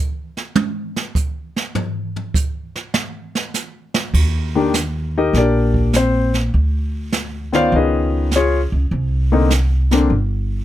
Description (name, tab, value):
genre	jazz piano trio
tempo	101 BPM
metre	4/4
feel	swing 68% on 8ths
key	Eb major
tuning	A4 = 439 Hz
part	jazz brush drum kit	drums	0.4-10.6 s	brushed snare drum, crash cymbal, hi-hat, kick drum, snare drum, toms	-21 LUFS	right 3 dB	none
part	upright bass	bass	4.1-10.6 s	G1 to Eb2	-17 LUFS	equal	none
part	warm baby grand piano	melody	4.6-10.1 s	D3 to F5	-16 LUFS	left 3 dB	none
room	little or no reverb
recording	none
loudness	-16 LUFS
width	side -13 dB against mid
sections	0.0-4.1 A section; 4.1-10.6 B section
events	drum solo 0.0-4.1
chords	0.0 N.C.; 4.1 Ebmaj7; 6.5 Dm; 7.7 Db9; 8.9 Csus2